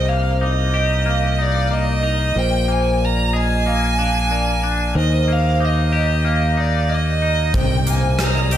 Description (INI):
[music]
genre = post-rock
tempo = 92 BPM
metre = 4/4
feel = straight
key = C minor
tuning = A4 = 440 Hz
[part]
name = clear violin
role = melody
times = 0.0-8.6 s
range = D5 to Bb5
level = -23 LUFS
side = right 1 dB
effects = slapback echo, tape echo
[part]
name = twangy electric guitar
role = arpeggios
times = 0.0-8.6 s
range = Bb2 to Ab4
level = -24 LUFS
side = left 4 dB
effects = analog chorus, slapback echo, tape echo
[part]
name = vibraphone with medium mallets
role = arpeggios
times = 0.0-8.6 s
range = C5 to D6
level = -25 LUFS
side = right 3 dB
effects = slapback echo, tape echo
[part]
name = growling fingered electric bass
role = bass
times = 0.0-8.6 s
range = Bb1 to Eb2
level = -18 LUFS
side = equal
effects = overdrive
[part]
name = big rock drum kit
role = drums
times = 7.5-8.6 s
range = hi-hat, kick drum, rim click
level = -20 LUFS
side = equal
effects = none
[sound]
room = light reverb, studio reverb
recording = none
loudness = -16 LUFS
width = side -11 dB against mid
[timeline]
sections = 0.0-8.6 A section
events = none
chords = 0.0 Cm7; 2.4 Bb7; 5.0 Eb; 7.6 Cm7